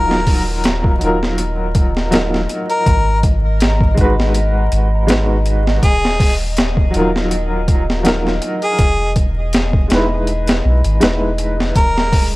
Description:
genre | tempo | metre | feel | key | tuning
trip hop | 81 BPM | 4/4 | swing 55% on 16ths | Eb minor | A4 = 440 Hz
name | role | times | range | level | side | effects
clear harmonica | melody | 0.0-12.3 s | Ab4 to Bb4 | -22 LUFS | left 1 dB | vintage 12-bit sampler grit, dub echo
warm upright piano | accompaniment | 0.0-11.8 s | Gb3 to Cb5 | -19 LUFS | equal | tremolo, tape echo
warbly tape-like pad | sustained chords | 0.5-12.4 s | Ab3 to Eb5 | -26 LUFS | equal | chorus, built-in reverb
soft dub sub bass | bass | 0.0-12.4 s | Eb1 to B1 | -18 LUFS | equal | tube saturation
boom bap sampler-style drum kit | drums | 0.1-12.3 s | hi-hat, kick drum, snare drum | -16 LUFS | equal | overdrive
room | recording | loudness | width
digital ambience | dry, gritty hardware recording, vinyl crackle | -13 LUFS | side -20 dB against mid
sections
0.0-12.4 A section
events
none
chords
0.0 Ebmadd9; 2.9 Abm7; 5.8 Ebmadd9; 8.8 Emaj7; 11.8 Eb5

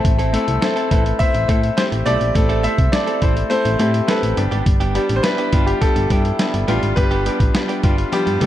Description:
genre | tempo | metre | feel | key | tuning
1980s-style pop | 104 BPM | 4/4 | straight | A minor | A4 = 439 Hz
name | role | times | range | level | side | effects
bright concert grand piano | accompaniment | 0.0-8.5 s | G3 to C5 | -21 LUFS | left 2 dB | none
direct-recorded clean electric guitar | riff | 0.0-8.5 s | G3 to A4 | -28 LUFS | right 4 dB | lush chorus, tape echo
solid FM bass | bass | 0.0-8.5 s | G1 to A2 | -20 LUFS | equal | none
dusty soul sampler-style drum kit | drums | 0.0-8.5 s | hi-hat, kick drum, snare drum, toms | -19 LUFS | equal | none
bright baby grand piano | melody | 0.6-8.5 s | G4 to E5 | -23 LUFS | equal | tape echo
room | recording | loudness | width
light reverb | dark, warm production | -15 LUFS | side -12 dB against mid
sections
0.0-8.5 A section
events
drum fill 8.1-8.5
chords
0.0 Am; 4.4 G

